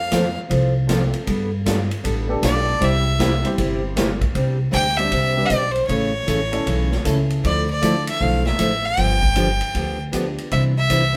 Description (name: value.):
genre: country, western swing.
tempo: 156 BPM.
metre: 4/4.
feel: swing 65% on 8ths.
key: C major.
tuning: A4 = 440 Hz.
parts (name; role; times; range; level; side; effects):
rich fiddle; melody; 0.0-11.2 s; C5 to G5; -24 LUFS; equal; none.
upright bass; bass; 0.0-11.1 s; G1 to G2; -24 LUFS; equal; none.
picked steel-string acoustic guitar; accompaniment; 0.1-11.0 s; C3 to A4; -26 LUFS; equal; none.
swinging big-band drum kit; drums; 0.1-11.0 s; hi-hat, kick drum, ride cymbal, snare drum; -29 LUFS; equal; none.
warm upright piano; accompaniment; 0.9-11.2 s; G3 to E5; -30 LUFS; equal; none.
room: moderate stone room reverb, RT60 1.1 s.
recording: band playing live in one room.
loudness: -20 LUFS.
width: mono.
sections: 0.0-4.4 A section; 4.4-11.2 B section.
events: fiddle solo 0.0-4.4.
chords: 0.0 F; 1.3 Gadd9; 2.8 C; 4.4 Csus2; 5.9 A; 7.4 Dmadd9; 9.0 G7; 10.5 Cadd9.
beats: 0.13 0.51 0.89 | 1.28 1.66 2.05 2.43 | 2.81 3.20 3.58 3.97 | 4.35 4.74 5.12 5.51 | 5.89 6.28 6.66 7.05 | 7.43 7.82 8.20 8.59 | 8.97 9.36 9.74 10.13 | 10.51 10.90.